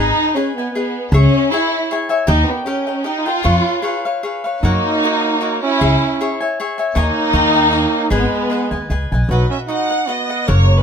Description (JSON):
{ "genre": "mexican folk, mariachi", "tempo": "154 BPM", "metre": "3/4", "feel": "swing 54% on 8ths, rubato", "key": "G# minor", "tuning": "A4 = 437 Hz", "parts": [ { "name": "dark studio violin section", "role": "melody", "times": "0.0-10.8 s", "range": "B3 to F#5", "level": "-17 LUFS", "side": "equal", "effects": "none" }, { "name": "cavaquinho", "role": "accompaniment", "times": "0.0-10.8 s", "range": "F#4 to A#5", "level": "-22 LUFS", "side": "left 3 dB", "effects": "none" }, { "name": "upright bass", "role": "bass", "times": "0.0-10.8 s", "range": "F#1 to F#2", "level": "-15 LUFS", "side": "equal", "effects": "none" }, { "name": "mellow trumpet", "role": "second line", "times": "4.6-10.8 s", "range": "F#3 to D#4", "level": "-22 LUFS", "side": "right 5 dB", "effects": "none" } ], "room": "light reverb", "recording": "close, detailed microphones", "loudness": "-14 LUFS", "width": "side -7 dB against mid", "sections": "0.0-9.3 A section; 9.3-10.8 B section", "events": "none", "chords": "0.0 G#m; 1.1 C#m; 2.3 D#; 3.4 C#7/E#; 4.6 F#; 5.8 C#m; 7.0 D#7sus4; 7.3 D#7; 8.1 G#m; 9.3 B", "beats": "0.35 0.74 | 1.12 1.51 1.89 | 2.28 2.66 3.05 | 3.44 3.83 4.23 | 4.62 5.02 5.41 | 5.80 6.18 6.57 | 6.95 7.33 7.72 | 8.11 8.50 8.90 | 9.30 9.69 10.09 | 10.48" }